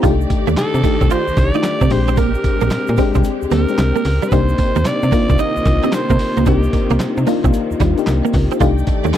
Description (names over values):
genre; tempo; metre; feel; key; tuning
R&B, new jack swing; 112 BPM; 4/4; swing 65% on 16ths; C minor; A4 = 440 Hz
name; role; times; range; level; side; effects
FM electric piano with tremolo; accompaniment; 0.0-9.2 s; Ab3 to G4; -21 LUFS; left 10 dB; none
warm studio string section; sustained chords; 0.0-9.2 s; C3 to G5; -25 LUFS; right 2 dB; none
direct-recorded clean electric guitar; riff; 0.0-9.2 s; G3 to F4; -20 LUFS; right 9 dB; ensemble chorus
slap-like FM bass; bass; 0.0-9.2 s; Bb1 to C3; -17 LUFS; equal; none
dusty soul sampler-style drum kit; drums; 0.0-9.2 s; handclaps, hi-hat, kick drum, snare drum, tambourine; -18 LUFS; equal; none
egg shaker; percussion; 0.0-9.2 s; none; -43 LUFS; right 14 dB; none
raspy alto saxophone; melody; 0.6-9.2 s; G4 to Eb5; -22 LUFS; right 1 dB; none
room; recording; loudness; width
little or no reverb; dry, close 1970s-style studio recording; -13 LUFS; side -11 dB against mid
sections
0.0-9.2 A section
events
kick muted 3.2-4.3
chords
0.0 F13/C; 1.9 Bb13; 4.3 Cm9; 8.6 F13/C